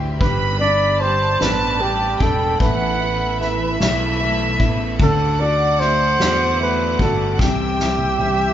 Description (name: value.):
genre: six-eight pop ballad.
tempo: 50 BPM (dotted quarters).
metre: 6/8.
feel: straight.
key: G major.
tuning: A4 = 440 Hz.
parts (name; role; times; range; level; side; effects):
felt-muted upright piano; accompaniment; 0.0-8.5 s; C3 to G5; -26 LUFS; left 4 dB; none.
warm studio string section; sustained chords; 0.0-8.5 s; G4 to E6; -31 LUFS; left 2 dB; none.
picked steel-string acoustic guitar; arpeggios; 0.0-8.5 s; G2 to G4; -30 LUFS; right 4 dB; none.
fretless electric bass; bass; 0.0-8.5 s; E1 to E2; -23 LUFS; equal; none.
breathy flugelhorn; melody; 0.2-8.5 s; G4 to D5; -20 LUFS; right 2 dB; digital delay.
warm studio violin section; second line; 0.2-8.5 s; E5 to B5; -24 LUFS; right 2 dB; none.
soft-mallet drum kit; drums; 0.2-8.4 s; kick drum, ride cymbal, snare drum, toms; -23 LUFS; equal; none.
room: moderate large studio reverb, RT60 0.9 s.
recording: band playing live in one room, nothing above 7.5 kHz.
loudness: -16 LUFS.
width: side -10 dB against mid.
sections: 0.0-8.5 A section.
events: felt piano fill 0.0; drum fill 7.4-8.5.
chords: 0.2 G; 2.6 Asus2; 5.0 D; 7.4 C.